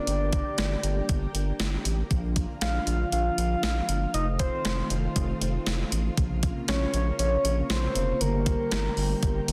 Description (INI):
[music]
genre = synth-pop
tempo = 118 BPM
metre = 4/4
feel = straight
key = unclear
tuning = A4 = 439 Hz
[part]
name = soft octave-layered synth lead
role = melody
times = 0.0-9.5 s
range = Bb4 to F5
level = -32 LUFS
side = equal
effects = chorus, phaser, delay, shimmer reverb
[part]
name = ensemble organ-string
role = sustained chords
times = 0.0-9.5 s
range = C3 to G4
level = -36 LUFS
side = equal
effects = ensemble chorus, shimmer reverb
[part]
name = round analog bass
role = bass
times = 0.1-9.5 s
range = F1 to Bb1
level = -30 LUFS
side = equal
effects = none
[part]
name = clean 12-bit digital drum machine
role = drums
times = 0.1-9.5 s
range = hi-hat, kick drum, snare drum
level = -32 LUFS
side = equal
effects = none
[sound]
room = light reverb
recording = dense, heavily limited modern master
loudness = -27 LUFS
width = mono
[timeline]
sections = 0.0-9.5 A section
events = none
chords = 0.1 Gm; 2.1 Bb; 4.1 F7; 6.2 Bbmadd9; 8.2 Gm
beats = | 0.07 0.58 1.09 1.60 | 2.11 2.62 3.12 3.63 | 4.14 4.65 5.16 5.67 | 6.17 6.68 7.19 7.70 | 8.21 8.72 9.23